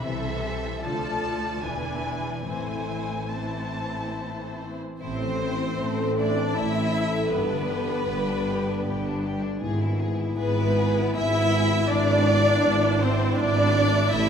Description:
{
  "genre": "classical, slow romantic movement for symphony orchestra",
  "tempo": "70-82 BPM",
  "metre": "3/4",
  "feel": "rubato",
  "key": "A minor",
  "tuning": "A4 = 439 Hz",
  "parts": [
    { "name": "rich studio violin section", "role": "melody", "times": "0.0-14.3 s", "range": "C4 to A5", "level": "-35 LUFS", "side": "left 3 dB", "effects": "none" },
    { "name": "rich chamber violin section", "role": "second line", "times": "0.0-14.3 s", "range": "E4 to E5", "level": "-28 LUFS", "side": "left 1 dB", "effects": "none" },
    { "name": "rich studio viola section", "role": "accompaniment", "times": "0.0-14.3 s", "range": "E3 to F4", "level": "-30 LUFS", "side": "equal", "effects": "none" },
    { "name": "mellow French horn section", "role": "sustained chords", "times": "0.0-14.3 s", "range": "E3 to E4", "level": "-31 LUFS", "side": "left 2 dB", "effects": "none" },
    { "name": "concert harp", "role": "arpeggios", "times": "0.0-14.3 s", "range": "G2 to B5", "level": "-33 LUFS", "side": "left 3 dB", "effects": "none" },
    { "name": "clear chamber double bass section", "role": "bass", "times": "0.0-14.3 s", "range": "E1 to D2", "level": "-33 LUFS", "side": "right 2 dB", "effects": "none" },
    { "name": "rich studio cello section", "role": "bass", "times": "0.0-14.3 s", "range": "D2 to C3", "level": "-30 LUFS", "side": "right 2 dB", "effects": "none" },
    { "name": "dark tuba", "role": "bass", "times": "5.0-14.3 s", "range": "G1 to A1", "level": "-31 LUFS", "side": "right 3 dB", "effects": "none" }
  ],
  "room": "wet scoring stage reverb, RT60 2.1 s",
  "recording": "minimal, uncompressed stereo recording",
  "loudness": "-22 LUFS",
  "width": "side -7 dB against mid",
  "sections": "0.0-5.0 A section; 5.0-14.3 B section",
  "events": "none",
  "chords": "0.1 Am/C; 0.9 Dm; 1.6 E7; 2.5 Am; 7.3 G; 9.6 E/G#; 11.9 E7/G#",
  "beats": "| 0.05 0.86 1.65 | 2.46 3.32 4.17 | 5.02 5.80 6.56 | 7.33 8.10 8.87 | 9.62 10.38 11.17 | 11.91 12.66 13.39 | 14.12"
}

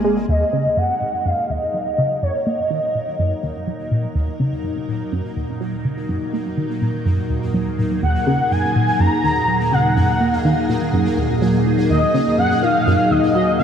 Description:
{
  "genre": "ambient, sequencer-driven space music",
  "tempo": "124 BPM",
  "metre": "4/4",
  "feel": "straight",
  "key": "unclear",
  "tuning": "A4 = 440 Hz",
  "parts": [
    { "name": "evolving wavetable pad", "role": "sustained chords", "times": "0.0-13.6 s", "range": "D#2 to A#4", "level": "-22 LUFS", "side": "equal", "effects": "ensemble chorus, built-in reverb, phaser" },
    { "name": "tight sequenced synth", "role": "riff", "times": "0.0-13.6 s", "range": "D#2 to A#3", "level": "-21 LUFS", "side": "equal", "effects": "chorus, tape echo" },
    { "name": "pulsing gated texture", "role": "texture", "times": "0.0-13.6 s", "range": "A#3 to Eb5", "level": "-29 LUFS", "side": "equal", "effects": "chorus, built-in reverb" },
    { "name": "expressive portamento lead", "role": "melody", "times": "0.3-3.9, 8.0-13.6 s", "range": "C#5 to A#5", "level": "-20 LUFS", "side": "equal", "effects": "ensemble chorus, tape echo" }
  ],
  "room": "wet huge ambient reverb, RT60 7.3 s",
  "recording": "none",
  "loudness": "-16 LUFS",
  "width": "side -8 dB against mid",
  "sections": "0.3-13.6 A section",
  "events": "fade-in on ambient pad 0.3-13.6; fade-in on synth texture 0.3-13.6",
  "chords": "0.3 D#m",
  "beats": "| 0.29 0.77 1.25 1.74 | 2.22 2.71 3.19 3.67 | 4.16 4.64 5.12 5.61 | 6.09 6.58 7.06 7.54 | 8.03 8.51 9.00 9.48 | 9.96 10.45 10.93 11.41 | 11.90 12.38 12.87 13.35"
}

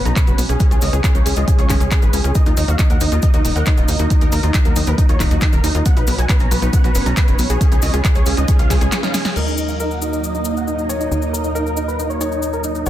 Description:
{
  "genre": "uplifting trance",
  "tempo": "137 BPM",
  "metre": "4/4",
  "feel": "straight",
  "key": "Eb minor",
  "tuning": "A4 = 437 Hz",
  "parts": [
    { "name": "big supersaw lead", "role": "melody", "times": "0.0-12.9 s", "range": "Eb4 to Bb5", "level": "-24 LUFS", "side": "right 1 dB", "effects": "sidechain pumping, low-pass filter, digital delay" },
    { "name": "lush unison pad", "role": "sustained chords", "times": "0.0-12.9 s", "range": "Gb3 to Eb5", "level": "-26 LUFS", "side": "right 2 dB", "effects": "chorus, phaser, sidechain pumping" },
    { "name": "wide unison pluck", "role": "arpeggios", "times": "0.0-9.3 s", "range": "B2 to Bb4", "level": "-28 LUFS", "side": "left 3 dB", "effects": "sidechain pumping, digital delay" },
    { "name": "tight sequencer bass", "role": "bass", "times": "0.0-12.9 s", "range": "Eb1 to Eb2", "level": "-20 LUFS", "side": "equal", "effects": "sidechain pumping" },
    { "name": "punchy analog drum machine", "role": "drums", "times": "0.1-9.4 s", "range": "crash cymbal, handclaps, hi-hat, snare drum", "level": "-24 LUFS", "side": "right 1 dB", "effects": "none" },
    { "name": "cabasa", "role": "percussion", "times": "0.1-12.9 s", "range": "none", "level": "-30 LUFS", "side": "left 6 dB", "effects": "none" },
    { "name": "electronic kick drum", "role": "drums", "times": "0.2-8.8 s", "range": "none", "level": "-15 LUFS", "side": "equal", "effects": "none" },
    { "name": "warm grand piano", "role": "second line", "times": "9.4-12.9 s", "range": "Bb4 to Db5", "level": "-27 LUFS", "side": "left 2 dB", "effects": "digital delay" }
  ],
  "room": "little or no reverb",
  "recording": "dense, heavily limited modern master",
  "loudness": "-14 LUFS",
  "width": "side -12 dB against mid",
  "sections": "0.0-9.4 A section; 9.4-12.9 B section",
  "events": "drum fill 8.7-9.4; break 8.9-9.4",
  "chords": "0.0 Bsus2; 0.6 Db7; 2.4 Ebm; 5.9 Bsus2; 7.6 Db7; 9.4 Ebm",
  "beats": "0.16 | 0.60 1.04 1.48 1.92 | 2.35 2.79 3.23 3.67 | 4.11 4.54 4.98 5.42 | 5.86 6.29 6.73 7.17 | 7.61 8.05 8.48 8.92 | 9.36 9.80 10.24 10.67 | 11.11 11.55 11.99 12.43 | 12.86"
}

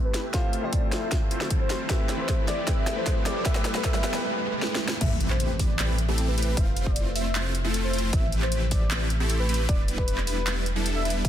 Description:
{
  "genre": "future bass",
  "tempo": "154 BPM",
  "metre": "4/4",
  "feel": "half-time",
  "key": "A minor",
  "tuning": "A4 = 443 Hz",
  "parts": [
    { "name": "warm velvety synth lead", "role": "melody", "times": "0.0-11.3 s", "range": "B4 to F5", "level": "-34 LUFS", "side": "left 1 dB", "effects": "chorus, sidechain pumping, digital delay" },
    { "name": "clear grand piano", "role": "accompaniment", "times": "0.0-5.0 s", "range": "F3 to E5", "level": "-34 LUFS", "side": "left 2 dB", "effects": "sidechain pumping, tape echo" },
    { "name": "ethereal airy pad", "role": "sustained chords", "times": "0.0-11.3 s", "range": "C3 to E5", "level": "-39 LUFS", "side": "left 2 dB", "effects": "ensemble chorus, built-in reverb, phaser, sidechain pumping" },
    { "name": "supersaw chords", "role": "riff", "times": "0.0-11.3 s", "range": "G3 to C5", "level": "-32 LUFS", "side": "equal", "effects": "sidechain pumping, low-pass filter" },
    { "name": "riser and impact", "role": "sound effects", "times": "0.6-6.6 s", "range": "none", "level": "-35 LUFS", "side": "right 1 dB", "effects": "none" },
    { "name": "trap drum kit", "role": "drums", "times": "0.1-11.3 s", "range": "crash cymbal, handclaps, hi-hat, ride cymbal, snare drum", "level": "-31 LUFS", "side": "equal", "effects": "overdrive" },
    { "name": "electronic kick drum", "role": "drums", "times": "0.3-11.3 s", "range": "none", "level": "-26 LUFS", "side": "equal", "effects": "none" },
    { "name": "saturated sub bass", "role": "bass", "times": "5.0-11.3 s", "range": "E1 to A1", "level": "-27 LUFS", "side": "equal", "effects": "sidechain pumping" }
  ],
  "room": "light reverb, digital ambience",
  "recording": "dense, heavily limited modern master",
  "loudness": "-23 LUFS",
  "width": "side -10 dB against mid",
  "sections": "0.0-5.0 A section; 5.0-11.3 B section",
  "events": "build-up 0.0-5.0; drum fill 0.0-4.2, 4.6-5.0; filter sweep on supersaw synth 0.0-5.0; riser 0.6-5.0; drop 5.0-11.3; impact 5.0-6.6",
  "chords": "0.3 Fmaj7; 1.9 Am9; 3.5 Em7; 5.0 Am9; 6.6 Fmaj7; 8.1 Am9; 9.7 Em7",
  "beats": "| 0.34 0.73 1.12 1.50 | 1.90 2.28 2.67 3.06 | 3.45 3.84 4.23 4.62 | 5.01 5.40 5.79 6.18 | 6.57 6.96 7.35 7.74 | 8.13 8.52 8.91 9.30 | 9.69 10.08 10.47 10.86 | 11.24"
}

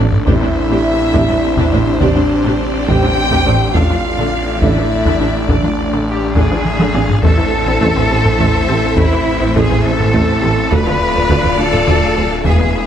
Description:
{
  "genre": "cinematic, hybrid orchestral and electronic film score",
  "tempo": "69 BPM (dotted quarters)",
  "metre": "6/8",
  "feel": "straight",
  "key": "A minor from 7.2 s",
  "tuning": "A4 = 440 Hz",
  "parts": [
    { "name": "rich symphonic violin section", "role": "melody", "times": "0.0-12.9 s", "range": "C5 to F5", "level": "-28 LUFS", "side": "left 4 dB", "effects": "none" },
    { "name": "rich symphonic viola section", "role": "accompaniment", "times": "0.0-12.6 s", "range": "C3 to A4", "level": "-24 LUFS", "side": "right 2 dB", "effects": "none" },
    { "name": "dark French horn section", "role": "sustained chords", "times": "0.0-12.9 s", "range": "A3 to F4", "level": "-23 LUFS", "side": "left 5 dB", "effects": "none" },
    { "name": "swarming drone", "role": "sustained chords", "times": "0.0-12.9 s", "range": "E3 to F5", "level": "-23 LUFS", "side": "equal", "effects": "built-in reverb" },
    { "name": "resonant blip pluck", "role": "arpeggios", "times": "0.0-12.7 s", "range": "C3 to A4", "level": "-25 LUFS", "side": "left 4 dB", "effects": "none" },
    { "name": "rich symphonic cello section", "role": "bass", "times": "0.0-12.9 s", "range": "A2 to B4", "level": "-19 LUFS", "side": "equal", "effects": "none" },
    { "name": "rich symphonic double bass section", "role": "bass", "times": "0.0-12.7 s", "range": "A1 to E2", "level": "-20 LUFS", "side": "right 3 dB", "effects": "none" },
    { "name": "snarling distorted saw bass", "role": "bass", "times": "0.0-12.9 s", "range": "D1 to A1", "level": "-22 LUFS", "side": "equal", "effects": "distortion" },
    { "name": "warm tuba", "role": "bass", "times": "0.0-12.5 s", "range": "E1 to D2", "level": "-23 LUFS", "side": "right 4 dB", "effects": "none" },
    { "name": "taiko ensemble", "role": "drums", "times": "0.1-12.9 s", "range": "none", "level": "-18 LUFS", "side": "equal", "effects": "none" },
    { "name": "dark duduk", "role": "melody", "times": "0.3-6.3 s", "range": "D4 to G4", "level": "-21 LUFS", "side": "right 3 dB", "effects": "tape echo" },
    { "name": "warm symphonic violin section", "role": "second line", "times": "0.3-12.9 s", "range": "B4 to G5", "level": "-22 LUFS", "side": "left 2 dB", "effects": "none" }
  ],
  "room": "moderate scoring stage reverb, RT60 2.1 s",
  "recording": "none",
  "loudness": "-11 LUFS",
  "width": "side -9 dB against mid",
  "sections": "0.0-7.2 A section; 7.2-12.9 B section",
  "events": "drum fill 0.0, 6.8-7.2",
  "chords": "0.3 Csus2/A; 3.8 Dm/A; 7.2 Am; 10.7 Dm",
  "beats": "| 0.28 1.15 | 2.02 2.89 | 3.76 4.63 | 5.50 6.37 | 7.23 8.10 | 8.97 9.84 | 10.71 11.58 | 12.45"
}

